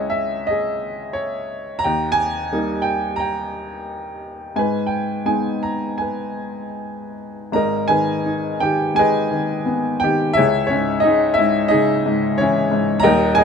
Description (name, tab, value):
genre	classical, lyrical solo piano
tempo	74-93 BPM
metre	4/4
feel	rubato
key	G# harmonic minor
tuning	A4 = 440 Hz
part	clear upright piano	solo	0.0-13.4 s	D#1 to A#5	-17 LUFS	equal	none
room	light reverb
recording	none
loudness	-17 LUFS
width	side -6 dB against mid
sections	0.0-7.5 A section; 7.5-13.4 A section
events	none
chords	0.0 C#m; 1.8 D#; 4.6 G#m; 10.4 C#m